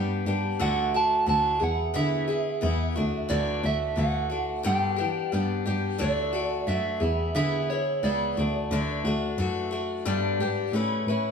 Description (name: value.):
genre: folk rock and heartland rock.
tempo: 89 BPM.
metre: 4/4.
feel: straight.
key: D major.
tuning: A4 = 437 Hz.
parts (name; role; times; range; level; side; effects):
electric slide guitar; melody; 0.0-10.7 s; C#5 to A5; -28 LUFS; right 4 dB; none.
picked swing-style acoustic guitar; accompaniment; 0.0-11.3 s; G2 to B4; -28 LUFS; left 4 dB; none.
dark cello; bass; 0.0-11.3 s; C#2 to E3; -28 LUFS; equal; none.
room: wet large studio reverb, RT60 1.3 s.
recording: band playing live in one room.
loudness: -24 LUFS.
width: side -6 dB against mid.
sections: 0.0-11.3 A section.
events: none.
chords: 0.0 G; 0.6 Dadd9; 1.6 E; 3.0 Dadd9; 4.7 G; 6.0 Dadd9; 7.0 E; 8.4 Dadd9; 10.1 G; 10.7 Aadd9.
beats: | 0.61 1.28 1.95 2.63 | 3.30 3.98 4.65 5.33 | 6.00 6.68 7.36 8.03 | 8.71 9.38 10.06 10.74.